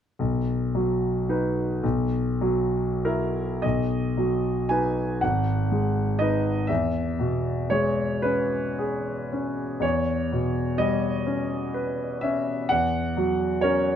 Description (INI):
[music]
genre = classical, romantic nocturne for solo piano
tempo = 31-43 BPM (dotted quarters)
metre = 6/8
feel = rubato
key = B major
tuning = A4 = 440 Hz
[part]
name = clear concert grand piano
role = solo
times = 0.2-14.0 s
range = G#1 to G#5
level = -23 LUFS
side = equal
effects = none
[sound]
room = light reverb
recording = close, detailed microphones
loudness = -23 LUFS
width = side -9 dB against mid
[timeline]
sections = 0.2-3.6 A section; 3.6-14.0 B section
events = none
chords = 0.2 B; 1.8 F#7/B; 3.6 B; 5.2 G#m7; 6.7 C#m7/E; 9.8 C#m7b5/E; 12.7 F#7/E